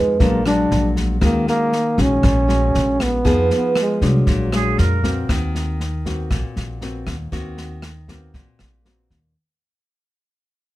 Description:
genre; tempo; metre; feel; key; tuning
bossa nova; 118 BPM; 4/4; straight; Eb minor, Eb dorian from 5.3 s; A4 = 440 Hz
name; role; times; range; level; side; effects
breathy trombone; melody; 0.0-5.0 s; Gb3 to D4; -20 LUFS; equal; none
nylon-string guitar; accompaniment; 0.0-9.3 s; Bb2 to Ab4; -22 LUFS; left 1 dB; none
upright bass; bass; 0.0-9.3 s; Bb1 to F2; -21 LUFS; equal; none
open jazz drum kit; drums; 0.2-9.2 s; kick drum, rim click, snare drum; -24 LUFS; equal; none
mellow silver concert flute; second line; 4.5-5.3 s; Ab4 to Bb4; -24 LUFS; right 6 dB; none
room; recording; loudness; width
little or no reverb; close, detailed microphones; -16 LUFS; side -16 dB against mid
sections
0.0-5.3 A section; 5.3-9.4 B section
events
fade-out 5.3-9.4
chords
0.2 Bbaug7; 1.2 Ebm7; 3.3 Fm7b5; 4.3 Bb7; 5.3 Ebm6

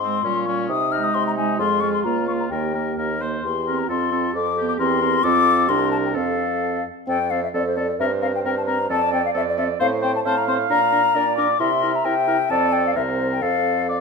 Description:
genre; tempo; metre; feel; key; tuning
quick classical-period movement for wind quintet; 132 BPM; 2/4; straight; F major from 3.4 s; A4 = 440 Hz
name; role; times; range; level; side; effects
mellow hollow silver concert flute; melody; 0.0-13.9 s; C5 to F6; -22 LUFS; left 8 dB; none
clear oboe; second line; 0.0-14.0 s; C4 to D5; -28 LUFS; left 2 dB; none
dark clarinet; accompaniment; 0.0-14.0 s; G3 to F5; -25 LUFS; right 9 dB; none
warm bassoon; bass; 0.0-14.0 s; C2 to C3; -27 LUFS; right 4 dB; none
clear French horn; accompaniment; 0.2-14.0 s; C4 to A4; -28 LUFS; equal; none
room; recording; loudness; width
moderate recital hall reverb, RT60 1.4 s; none; -18 LUFS; side -4 dB against mid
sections
0.0-7.1 A section; 7.1-14.0 B section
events
none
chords
0.2 Gdim/Bb; 0.7 Ab/C; 1.6 Fm; 2.1 Bbm/Db; 2.5 Eb; 3.4 C7/E; 3.9 F; 4.3 G7/F; 4.8 C7/E; 5.2 F; 5.7 Csus2; 6.2 F; 8.0 C5/G; 8.9 F; 9.8 F/A; 10.7 Bb; 11.6 C7; 12.5 F; 13.0 C7(no3); 13.4 F

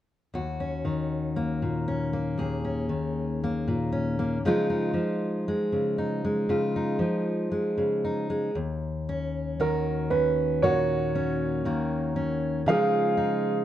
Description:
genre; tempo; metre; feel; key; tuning
acoustic folk-pop ballad; 58 BPM; 4/4; straight; Eb minor; A4 = 440 Hz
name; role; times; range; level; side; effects
fingerpicked steel-string acoustic guitar; accompaniment; 0.3-13.6 s; Eb2 to Ab4; -26 LUFS; left 1 dB; none
warm concert grand piano; melody; 9.6-13.6 s; Gb4 to F5; -26 LUFS; right 4 dB; none
room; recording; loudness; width
moderate spring reverb, RT60 1.4 s; dark, warm production; -25 LUFS; side -12 dB against mid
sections
0.3-8.6 A section; 8.6-13.6 B section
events
none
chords
0.3 Ebm7; 4.4 Dbadd9; 8.6 Ebm7; 12.7 Dbadd9

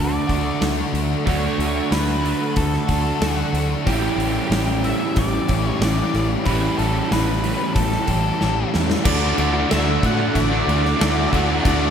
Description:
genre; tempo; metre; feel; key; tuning
rock, shoegaze and dream pop; 92 BPM; 4/4; straight; D major; A4 = 440 Hz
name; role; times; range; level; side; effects
octave-fuzz lead guitar; melody; 0.0-11.9 s; F#4 to F#5; -27 LUFS; left 2 dB; distortion, diffuse ambient delay
direct-recorded clean electric guitar; arpeggios; 0.0-11.9 s; E3 to G4; -32 LUFS; right 3 dB; none
biting overdriven guitar; riff; 0.0-11.9 s; A2 to G4; -25 LUFS; left 7 dB; wide subtle chorus
overdriven semi-hollow guitar; riff; 0.0-11.9 s; A2 to F#4; -24 LUFS; right 6 dB; reverse reverb
overdriven semi-hollow guitar; riff; 0.0-11.9 s; A2 to F#4; -28 LUFS; equal; ensemble chorus
vintage muted fingered electric bass; bass; 0.0-11.9 s; A1 to A2; -24 LUFS; equal; none
big rock drum kit; drums; 0.3-11.8 s; crash cymbal, hi-hat, kick drum, snare drum; -25 LUFS; equal; none
string machine, violas; sustained chords; 9.1-11.9 s; A4 to D6; -30 LUFS; left 1 dB; phaser, ensemble chorus
room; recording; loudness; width
moderate lush hall reverb, RT60 1.9 s, small room ambience; dreamy mix soaked in reverb; -17 LUFS; side -8 dB against mid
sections
0.0-9.1 A section; 9.1-11.9 B section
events
drum fill 8.4-9.1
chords
0.0 D; 3.9 A7sus4; 9.1 Dadd9

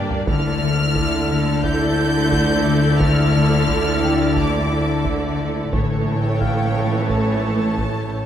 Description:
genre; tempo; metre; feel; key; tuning
cinematic, suspense film score; 88 BPM; 4/4; straight; D harmonic minor; A4 = 439 Hz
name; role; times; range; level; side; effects
rich symphonic violin section; second line; 0.0-8.3 s; G4 to D5; -27 LUFS; left 1 dB; none
clear symphonic viola section; accompaniment; 0.0-8.3 s; E3 to E4; -23 LUFS; equal; none
concert harp; riff; 0.0-8.3 s; G2 to D4; -22 LUFS; left 5 dB; none
clear symphonic cello section; bass; 0.0-8.3 s; G2 to D3; -24 LUFS; right 3 dB; none
rich symphonic double bass section; bass; 0.0-8.3 s; G1 to D2; -26 LUFS; right 4 dB; none
solo taiko drums; drums; 0.1-8.3 s; none; -28 LUFS; right 1 dB; none
warm symphonic violin section; melody; 0.3-8.3 s; G5 to G6; -26 LUFS; left 1 dB; none
concert harp; texture; 0.6-8.3 s; F5 to C#7; -34 LUFS; left 3 dB; none
room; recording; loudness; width
moderate scoring stage reverb, RT60 1.6 s; none; -16 LUFS; side -10 dB against mid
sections
0.0-8.3 A section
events
drum fill 0.0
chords
0.3 Dmadd9; 5.7 A

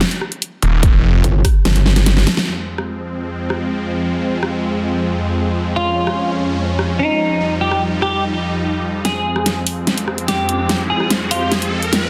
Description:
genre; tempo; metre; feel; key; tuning
heavy wobble dubstep; 146 BPM; 4/4; half-time; F minor; A4 = 439 Hz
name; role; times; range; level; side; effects
dubstep drum kit; drums; 0.0-12.0 s; hi-hat, rim click, snare drum; -21 LUFS; equal; none
snarling distorted saw bass; bass; 0.6-1.2 s; Eb1 to F1; -16 LUFS; equal; distortion, overdrive
electronic kick drum; drums; 0.8-1.5 s; none; -15 LUFS; equal; none
metallic wobble bass; bass; 1.2-2.3 s; G1; -16 LUFS; equal; chorus, overdrive
supersaw chords; sustained chords; 2.5-12.1 s; F2 to Eb4; -22 LUFS; equal; sidechain pumping, low-pass filter
clean electric guitar; melody; 5.8-11.5 s; Eb4 to Ab4; -22 LUFS; equal; analog chorus, delay
riser; sound effects; 10.0-12.1 s; none; -27 LUFS; equal; none
room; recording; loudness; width
light reverb; dense, heavily limited modern master; -18 LUFS; mono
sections
0.0-2.5 A section; 2.5-9.0 B section; 9.0-12.1 C section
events
drop 0.0-2.5; drum fill 1.9-2.5, 9.0-12.1; band accent 2.4; build-up 9.0-12.1; filter sweep on supersaw synth 9.0-12.1; riser 10.0-12.1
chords
0.0 Ebadd9; 2.5 Fm; 5.8 Db/F; 7.4 Eb/F; 9.0 Fm

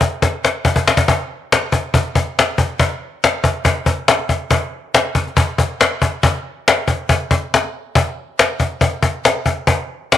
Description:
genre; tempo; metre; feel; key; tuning
rock; 140 BPM; 4/4; straight; none; none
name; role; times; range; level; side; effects
cajon; drums; 0.0-10.2 s; none; -14 LUFS; left 2 dB; none
room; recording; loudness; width
light reverb, studio reverb; 1960s-style stereo; -15 LUFS; side -11 dB against mid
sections
0.0-1.1 A section; 1.1-10.2 B section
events
drum fill 0.2-1.1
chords
none

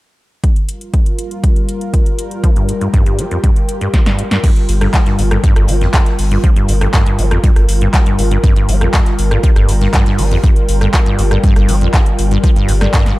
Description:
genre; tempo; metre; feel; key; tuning
acid house; 120 BPM; 4/4; straight; G minor; A4 = 441 Hz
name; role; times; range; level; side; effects
warm analog pad; sustained chords; 0.8-13.2 s; G3 to D5; -22 LUFS; left 1 dB; chorus, sidechain pumping
electro analog drum machine; drums; 0.4-13.2 s; crash cymbal, handclaps, hi-hat, rim click, snare drum; -21 LUFS; left 1 dB; none
electronic kick drum; drums; 0.4-13.0 s; none; -12 LUFS; equal; overdrive
ethereal airy pad; texture; 0.9-13.2 s; F4 to G5; -25 LUFS; equal; ensemble chorus, built-in reverb, sidechain pumping
acid bass, saw; riff; 2.4-13.1 s; F2 to G3; -19 LUFS; equal; tube saturation, wide subtle chorus, sidechain pumping
open jazz drum kit; drums; 4.4-13.2 s; hi-hat, snare drum; -32 LUFS; left 3 dB; none
saturated sub bass; bass; 4.7-12.9 s; G1; -14 LUFS; equal; tube saturation, sidechain pumping
room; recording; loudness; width
light reverb; dark, warm production; -10 LUFS; side -18 dB against mid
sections
0.4-4.4 A section; 4.4-13.2 B section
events
drum fill 3.9-4.4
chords
0.4 Gm7

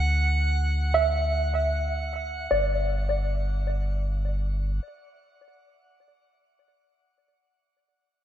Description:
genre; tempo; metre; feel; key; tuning
ambient; free time; none; none; unclear; A4 = 439 Hz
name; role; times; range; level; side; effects
warm sub bass; bass; 0.0-4.8 s; G1 to D2; -26 LUFS; equal; none
drifting glass-harmonics texture; texture; 0.0-2.5 s; F#5 to F#6; -32 LUFS; right 3 dB; chorus, built-in reverb, shimmer reverb
soft round pluck; arpeggios; 0.9-6.4 s; D5 to E5; -27 LUFS; right 1 dB; analog chorus, analog delay, shimmer reverb
room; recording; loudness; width
moderate echo chamber reverb, RT60 2.0 s; echo-heavy mix; -24 LUFS; side -10 dB against mid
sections
0.0-2.5 A section; 2.5-5.6 B section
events
none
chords
0.0 D; 2.5 G5

